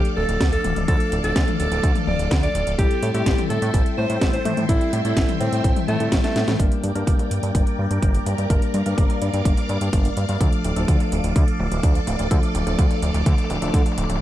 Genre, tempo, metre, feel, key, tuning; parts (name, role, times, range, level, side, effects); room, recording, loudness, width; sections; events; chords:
italo disco; 126 BPM; 4/4; straight; D minor; A4 = 441 Hz
clear alto saxophone; melody; 0.0-6.5 s; A3 to D5; -25 LUFS; equal; digital delay
phased string machine; sustained chords; 0.0-14.2 s; A4 to D6; -30 LUFS; right 1 dB; ensemble chorus, phaser
tine electric piano; stabs; 0.0-14.2 s; F3 to Bb4; -27 LUFS; left 1 dB; low-pass filter, digital delay
house drum kit; drums; 0.0-14.2 s; hi-hat, snare drum, toms; -28 LUFS; left 2 dB; high-pass filter on hats, high-pass filter on snare, high-pass filter on toms, high-pass filter on room
fat analog bass; bass; 0.2-14.2 s; D1 to A2; -24 LUFS; equal
electronic kick drum; drums; 0.4-13.8 s; -20 LUFS; equal
light reverb; dark, warm production; -18 LUFS; side -13 dB against mid
0.0-6.6 A section; 6.6-14.2 B section
drum fill 6.2-6.6, 6.6-14.2
0.0 Dm; 2.8 Am7; 6.6 Gm; 10.4 Dm